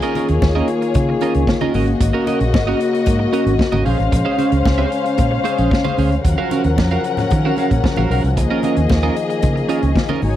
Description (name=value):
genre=disco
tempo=113 BPM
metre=4/4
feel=straight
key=Db major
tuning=A4 = 440 Hz
part: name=dark studio string section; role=second line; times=0.0-10.4 s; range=Bb3 to Ab5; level=-21 LUFS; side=left 4 dB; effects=tape echo
part: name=clean electric guitar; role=accompaniment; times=0.0-10.3 s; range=Db4 to F5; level=-22 LUFS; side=right 7 dB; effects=analog chorus
part: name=mellow French horn section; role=sustained chords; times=0.0-10.4 s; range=Db3 to Gb4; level=-23 LUFS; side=left 2 dB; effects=stereo widening
part: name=vintage drum kit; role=drums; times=0.0-10.3 s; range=hi-hat, kick drum, snare drum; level=-19 LUFS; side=equal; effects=none
part: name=congas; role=percussion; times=0.2-10.3 s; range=none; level=-26 LUFS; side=left 5 dB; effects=none
part: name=vintage muted fingered electric bass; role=bass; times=0.3-10.4 s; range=Ab1 to Eb3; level=-18 LUFS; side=equal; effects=none
room=small room ambience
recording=dry, close 1970s-style studio recording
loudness=-14 LUFS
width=side -12 dB against mid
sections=0.0-10.4 A section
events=none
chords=0.0 Db69; 1.7 Ab9sus4; 3.9 Bbm9; 6.2 Ebm9; 8.4 Db69